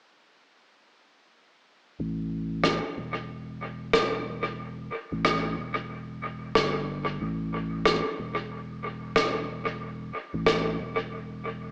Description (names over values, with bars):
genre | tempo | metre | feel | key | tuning
ambient dub | 92 BPM | 4/4 | swing 58% on 16ths | unclear | A4 = 438 Hz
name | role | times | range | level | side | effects
soft dub sub bass | bass | 2.0-11.7 s | E1 to A1 | -37 LUFS | equal | none
rim click | drums | 2.6-10.6 s | none | -32 LUFS | equal | dub echo
room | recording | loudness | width
moderate plate reverb, RT60 1.5 s | dreamy mix soaked in reverb, AM radio sound | -29 LUFS | mono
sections
2.0-11.7 A section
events
none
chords
none